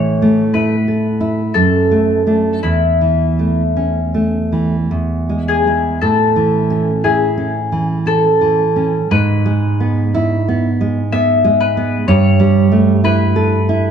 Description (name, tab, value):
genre	romantic duo for mandolin and classical guitar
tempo	52-64 BPM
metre	3/4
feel	rubato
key	A major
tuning	A4 = 437 Hz
part	mandolin	melody	0.0-13.9 s	E4 to E5	-16 LUFS	left 2 dB	none
part	nylon-string guitar	accompaniment	0.0-13.9 s	E2 to A4	-14 LUFS	right 1 dB	none
room	moderate recital hall reverb, RT60 1.4 s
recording	dark, warm production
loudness	-12 LUFS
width	side -8 dB against mid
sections	0.0-13.9 A section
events	none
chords	0.0 A; 1.5 D/F#; 2.6 A/E; 4.9 E; 6.0 A; 9.1 E/G#; 12.1 A7/G